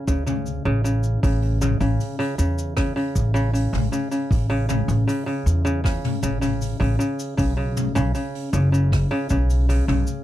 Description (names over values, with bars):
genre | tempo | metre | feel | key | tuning
folktronica | 78 BPM | 4/4 | straight | unclear | A4 = 440 Hz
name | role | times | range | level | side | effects
kora | arpeggios | 0.0-10.2 s | C#3 | -25 LUFS | equal | tape echo
upright bass | bass | 0.1-10.0 s | F#1 to E2 | -21 LUFS | equal | none
electronic kick drum | drums | 0.1-9.5 s | none | -23 LUFS | equal | none
jazz brush drum kit | drums | 0.1-10.2 s | cabasa, hi-hat, rim click, toms | -30 LUFS | left 4 dB | none
room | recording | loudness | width
little or no reverb | none | -19 LUFS | side -13 dB against mid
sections
0.0-1.2 A section; 1.2-10.2 B section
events
none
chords
0.0 D5; 1.2 A; 7.4 Bsus2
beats
0.46 | 1.23 2.00 2.77 3.54 | 4.31 5.08 5.85 6.62 | 7.38 8.15 8.92 9.69